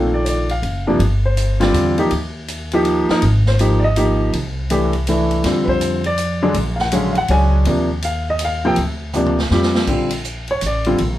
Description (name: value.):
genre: jazz piano trio.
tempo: 162 BPM.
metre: 3/4.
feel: swing 64% on 8ths.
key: G minor.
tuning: A4 = 441 Hz.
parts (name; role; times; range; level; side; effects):
warm baby grand piano; melody; 0.0-11.0 s; G2 to Ab5; -17 LUFS; equal; none.
upright bass; bass; 0.0-11.2 s; Gb1 to F2; -19 LUFS; equal; none.
swinging big-band drum kit; drums; 0.3-11.1 s; crash cymbal, hi-hat, kick drum, ride cymbal, snare drum, toms; -27 LUFS; equal; none.
room: wet studio ambience, RT60 0.5 s.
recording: heard from further back in the room.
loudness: -15 LUFS.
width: side -13 dB against mid.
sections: 0.0-1.0 A section; 1.0-9.9 B section; 9.9-11.2 A section.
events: drum fill 9.1-9.9.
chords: 0.0 Bbmaj9; 1.0 G7(no3); 2.1 Eb; 3.2 Abmaj9; 4.3 C69; 5.4 Fsus2; 6.5 Bb7alt; 7.7 Ebsus2; 8.8 Dm7; 9.5 F5; 9.9 Bbmaj13.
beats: 0.26 0.63 | 1.00 1.37 1.74 | 2.11 2.48 2.85 | 3.22 3.59 3.96 | 4.33 4.70 5.07 | 5.44 5.81 6.18 | 6.55 6.92 7.29 | 7.66 8.03 8.40 | 8.77 9.14 9.51 | 9.88 10.25 10.62 | 10.99.